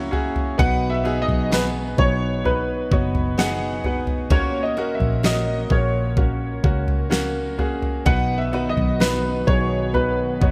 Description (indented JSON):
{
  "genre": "pop ballad",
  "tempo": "64 BPM",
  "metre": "4/4",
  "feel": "straight",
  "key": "B major",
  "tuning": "A4 = 441 Hz",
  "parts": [
    { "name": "clear upright piano", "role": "accompaniment", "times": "0.0-10.5 s", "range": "A#2 to A#5", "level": "-28 LUFS", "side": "equal", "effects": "none" },
    { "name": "picked steel-string acoustic guitar", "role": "arpeggios", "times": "0.0-10.5 s", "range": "F#2 to B4", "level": "-36 LUFS", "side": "equal", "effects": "none" },
    { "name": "vintage muted fingered electric bass", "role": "bass", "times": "0.0-10.5 s", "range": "F#1 to C#2", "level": "-27 LUFS", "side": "equal", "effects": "none" },
    { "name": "smooth R&B drum kit", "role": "drums", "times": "0.1-10.5 s", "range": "kick drum, snare drum, toms", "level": "-25 LUFS", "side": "equal", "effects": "gated reverb" },
    { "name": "warm baby grand piano", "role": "melody", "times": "0.6-10.5 s", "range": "B4 to F#5", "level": "-27 LUFS", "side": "equal", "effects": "analog chorus" },
    { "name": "lush unison pad", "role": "sustained chords", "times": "8.1-10.5 s", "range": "D#3 to F#4", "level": "-32 LUFS", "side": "equal", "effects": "none" }
  ],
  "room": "light reverb, small room reverb",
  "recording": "bright 1980s-style digital production",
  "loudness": "-21 LUFS",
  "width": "mono",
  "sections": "0.0-10.5 A section",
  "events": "upright piano fill 0.0-0.6",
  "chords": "0.0 F#7; 0.6 B; 4.3 F#/A#; 8.1 B"
}